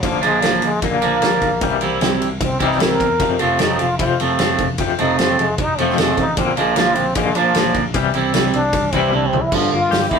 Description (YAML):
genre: indie rock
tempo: 152 BPM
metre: 4/4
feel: straight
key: F major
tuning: A4 = 440 Hz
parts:
  - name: trombone with plunger mute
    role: melody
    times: 0.0-10.2 s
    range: F3 to Bb4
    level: -20 LUFS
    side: left 1 dB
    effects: none
  - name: twangy electric guitar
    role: riff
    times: 0.0-10.2 s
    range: F2 to G4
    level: -23 LUFS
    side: left 7 dB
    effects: tremolo
  - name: picked electric bass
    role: bass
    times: 0.0-10.2 s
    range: F1 to E2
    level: -26 LUFS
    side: equal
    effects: none
  - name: loose indie drum kit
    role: drums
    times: 0.0-10.2 s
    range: crash cymbal, hi-hat, kick drum, ride cymbal, snare drum, toms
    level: -21 LUFS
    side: equal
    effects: none
  - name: twangy electric guitar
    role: riff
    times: 0.2-10.2 s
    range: G2 to E4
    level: -18 LUFS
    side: right 5 dB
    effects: none
room: moderate studio reverb, RT60 0.6 s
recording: rough rehearsal-room recording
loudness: -15 LUFS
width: side -6 dB against mid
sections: 0.0-9.5 A section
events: trombone solo 0.0-9.5; drum fill 9.1-9.5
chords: 0.0 Bb; 1.6 C; 3.2 F; 6.4 Bb; 7.9 C; 9.5 Gm7